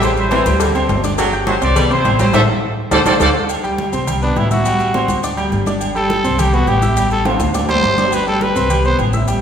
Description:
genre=latin, salsa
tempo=207 BPM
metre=4/4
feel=straight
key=unclear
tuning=A4 = 440 Hz
part: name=bright trumpet section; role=melody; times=0.0-3.3 s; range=E4 to E5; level=-19 LUFS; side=equal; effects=none
part: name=clear saxophone section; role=second line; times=0.0-3.3 s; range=C3 to A3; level=-22 LUFS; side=right 2 dB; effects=none
part: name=bright grand piano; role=accompaniment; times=0.0-9.4 s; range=G3 to G6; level=-19 LUFS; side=equal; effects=none
part: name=upright bass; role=bass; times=0.0-9.4 s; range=G1 to D2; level=-19 LUFS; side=equal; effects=none
part: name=agogo bells and timbales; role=percussion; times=0.0-9.4 s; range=none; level=-23 LUFS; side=right 3 dB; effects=none
part: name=congas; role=percussion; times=0.0-9.4 s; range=none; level=-24 LUFS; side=equal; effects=none
part: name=cowbell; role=percussion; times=0.0-3.3 s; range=none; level=-24 LUFS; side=left 5 dB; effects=none
part: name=maracas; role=percussion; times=0.0-9.4 s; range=none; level=-32 LUFS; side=left 6 dB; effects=none
part: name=growling trumpet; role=melody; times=4.2-9.0 s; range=D4 to C5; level=-18 LUFS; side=equal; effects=none
room=wet recital hall reverb, RT60 1.6 s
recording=recorded in a church or concert hall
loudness=-13 LUFS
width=side -8 dB against mid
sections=0.0-3.5 A section; 3.5-9.4 B section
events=band accent 2.3-3.5; drum fill 2.8-3.5, 7.3-8.1; trumpet solo 3.5-9.4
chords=0.0 Am7; 0.6 D7sus4; 1.8 Cmaj7; 2.3 Am; 2.9 D7sus4; 3.5 C5; 4.1 Cmaj7; 4.7 Am7; 5.2 Dsus4; 5.8 G5; 6.4 Cmaj7; 7.0 Am7; 7.5 D7sus4; 8.1 G; 8.7 Cmaj7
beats=| 0.02 0.31 0.60 0.89 | 1.18 1.47 1.76 2.05 | 2.34 2.63 2.92 3.21 | 3.50 3.79 4.07 4.36 | 4.65 4.94 5.23 5.52 | 5.81 6.10 6.39 6.68 | 6.97 7.25 7.54 7.83 | 8.12 8.41 8.70 8.99 | 9.28

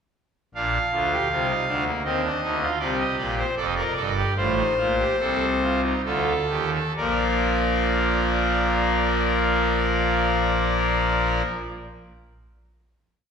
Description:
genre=classical, baroque-style 3-part fugue for pipe organ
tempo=64-80 BPM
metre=4/4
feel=straight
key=Bb major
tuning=A4 = 440 Hz
part: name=pipe organ, trumpet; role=solo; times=0.5-11.4 s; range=F1 to F5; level=-20 LUFS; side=equal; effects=none
room=wet recital hall reverb, RT60 1.5 s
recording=minimal, uncompressed stereo recording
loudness=-20 LUFS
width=side -6 dB against mid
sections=0.5-7.0 exposition; 7.0-10.7 final chord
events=slowing down 0.5-8.8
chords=0.5 Bb; 3.6 F7; 7.0 Bb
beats=| 0.55 1.30 2.05 2.81 | 3.58 4.37 5.18 6.05 | 6.96 7.88 8.80 9.73

